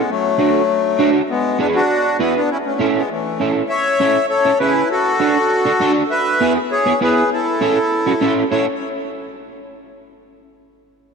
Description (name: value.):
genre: latin.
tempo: 200 BPM.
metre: 4/4.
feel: straight.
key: A major.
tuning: A4 = 440 Hz.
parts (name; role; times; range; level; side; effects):
accordion; melody; 0.0-8.7 s; E3 to E5; -17 LUFS; left 2 dB; ping-pong delay.
electric guitar at the edge of break-up; accompaniment; 0.4-8.7 s; B3 to B4; -19 LUFS; right 4 dB; ensemble chorus.
room: wet plate reverb, RT60 3.6 s.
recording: dreamy mix soaked in reverb.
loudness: -14 LUFS.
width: side -5 dB against mid.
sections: 0.0-3.7 A section; 3.7-8.5 B section; 8.5-9.7 C section.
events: none.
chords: 0.1 D; 1.3 E7; 2.5 A; 4.9 D; 6.1 E; 7.3 A.